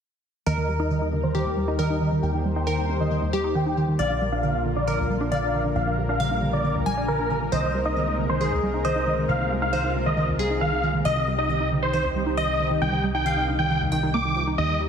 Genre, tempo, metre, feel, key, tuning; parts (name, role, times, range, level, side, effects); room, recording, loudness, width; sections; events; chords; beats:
trance; 136 BPM; 4/4; straight; Eb major; A4 = 440 Hz
big supersaw lead; melody; 0.5-14.8 s; Bb4 to D6; -27 LUFS; equal; low-pass filter, dub echo
glassy wavetable pluck; second line; 0.5-14.5 s; G4 to Ab5; -29 LUFS; left 1 dB; chorus, digital delay
lush unison pad; sustained chords; 0.5-14.9 s; C3 to C5; -30 LUFS; left 1 dB; chorus
tight sequenced synth; arpeggios; 0.5-14.9 s; D2 to Eb4; -28 LUFS; right 2 dB; chorus, dub echo
fat analog bass; bass; 0.5-14.9 s; Bb1 to Eb2; -28 LUFS; equal
moderate lush hall reverb, RT60 2.6 s; dense, heavily limited modern master; -21 LUFS; side -7 dB against mid
0.5-14.9 A section
filter sweep on supersaw synth 0.5-14.9; filter sweep on synth arpeggio sound 0.5-14.9
0.5 Eb; 4.0 Bb; 7.5 Abadd9/C; 11.1 Cm
| 0.46 0.91 1.35 1.79 | 2.23 2.67 3.11 3.55 | 3.99 4.43 4.88 5.32 | 5.76 6.20 6.64 7.08 | 7.52 7.96 8.40 8.85 | 9.29 9.73 10.17 10.61 | 11.05 11.49 11.94 12.38 | 12.82 13.26 13.70 14.14 | 14.58